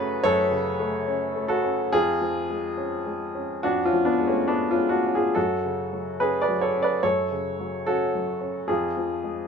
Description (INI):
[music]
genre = neoclassical minimalist piano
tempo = 72 BPM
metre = 4/4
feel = rubato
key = F# harmonic minor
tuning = A4 = 437 Hz
[part]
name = clear upright piano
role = solo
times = 0.0-9.5 s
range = E#2 to D5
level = -22 LUFS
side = equal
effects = none
[sound]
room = light reverb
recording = minimal, uncompressed stereo recording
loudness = -22 LUFS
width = side -6 dB against mid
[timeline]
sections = 0.0-9.5 A section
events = none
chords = 0.0 F#m; 1.9 C#/E#; 5.4 F#m; 8.7 C#/E# (rootless)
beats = 0.25 1.07 | 1.91 2.76 3.63 4.50 | 5.35 6.21 7.03 7.87 | 8.69